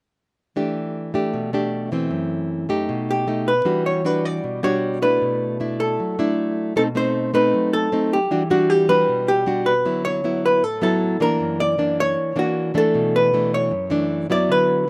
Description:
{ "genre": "bossa nova", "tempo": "155 BPM", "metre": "4/4", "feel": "straight", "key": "unclear", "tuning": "A4 = 440 Hz", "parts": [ { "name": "nylon-string guitar", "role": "accompaniment", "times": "0.6-14.9 s", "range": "F#2 to G4", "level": "-24 LUFS", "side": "equal", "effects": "slapback echo" }, { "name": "archtop guitar, miked and amplified", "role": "melody", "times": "3.1-14.9 s", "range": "F#4 to D5", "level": "-22 LUFS", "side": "equal", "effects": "none" } ], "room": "little or no reverb", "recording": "recorded outdoors, with no room sound", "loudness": "-21 LUFS", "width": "mono", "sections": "0.6-3.7 A section; 3.7-14.9 B section", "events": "none", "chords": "0.6 Em7; 2.1 F#m7b5; 2.9 B7b13; 3.7 Em9; 5.2 Bm7; 6.8 B7b9; 8.3 Em9; 9.9 D69; 11.4 F#7b13; 12.9 Bm11", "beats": "| 0.56 0.95 1.33 1.72 | 2.11 2.50 2.88 3.27 | 3.66 4.05 4.43 4.82 | 5.21 5.60 5.98 6.37 | 6.76 7.14 7.53 7.92 | 8.30 8.69 9.08 9.46 | 9.85 10.24 10.62 11.01 | 11.40 11.78 12.17 12.56 | 12.94 13.33 13.72 14.11 | 14.49 14.88" }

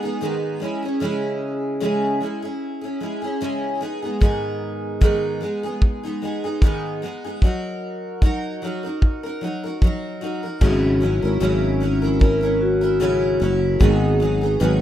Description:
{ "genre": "acoustic pop", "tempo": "75 BPM", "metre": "4/4", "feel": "swing 55% on 16ths", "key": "G# minor", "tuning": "A4 = 439 Hz", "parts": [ { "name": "picked steel-string acoustic guitar", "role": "accompaniment", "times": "0.0-14.8 s", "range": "G#2 to A#4", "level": "-23 LUFS", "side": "equal", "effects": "double-tracked left and right" }, { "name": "cloth-damped thuddy drum kit", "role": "drums", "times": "4.2-14.0 s", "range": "crash cymbal, kick drum", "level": "-16 LUFS", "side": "equal", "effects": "none" }, { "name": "vibraphone with soft mallets", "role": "second line", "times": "10.6-14.8 s", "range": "F#4 to B4", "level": "-22 LUFS", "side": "left 2 dB", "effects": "none" }, { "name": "sustaining fretless electric bass", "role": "bass", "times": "10.6-14.8 s", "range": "F#1 to G#1", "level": "-21 LUFS", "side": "left 1 dB", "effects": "lush chorus" } ], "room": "studio ambience", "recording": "rough home demo mix", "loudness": "-19 LUFS", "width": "side -12 dB against mid", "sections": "0.0-10.6 A section; 10.6-14.8 B section", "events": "none", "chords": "0.0 G#m; 0.6 C#m; 3.8 G#m; 7.4 D#m/F#; 10.6 F#7/G#; 13.8 G#m7", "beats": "0.21 | 1.01 1.81 2.62 3.42 | 4.22 5.02 5.82 6.62 | 7.42 8.22 9.02 9.81 | 10.61 11.41 12.21 13.01 | 13.80 14.60" }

